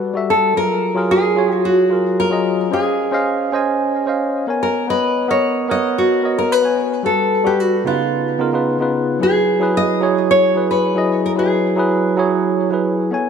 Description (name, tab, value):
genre	chillout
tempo	111 BPM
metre	4/4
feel	straight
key	unclear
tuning	A4 = 440 Hz
part	bright tine electric piano	accompaniment	0.0-13.3 s	C#3 to G#5	-17 LUFS	moving between left 5 dB and right 5 dB	auto-pan, ping-pong delay
part	nylon-string guitar	melody	0.3-13.2 s	E#4 to D#5	-18 LUFS	equal	ping-pong delay
room	moderate lush hall reverb, RT60 2.7 s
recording	none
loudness	-14 LUFS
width	side -6 dB against mid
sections	0.0-9.2 A section; 9.2-13.3 B section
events	none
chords	0.0 Gmaj9; 0.6 F#maj9; 2.7 C#maj9; 4.6 Bmaj9; 7.0 Gmaj9; 8.1 C#9; 9.2 F#9sus4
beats	0.02 | 0.56 1.10 1.64 2.18 | 2.72 3.26 3.80 4.34 | 4.88 5.43 5.97 6.51 | 7.05 7.59 8.13 8.67 | 9.21 9.75 10.29 10.83 | 11.37 11.91 12.45 12.99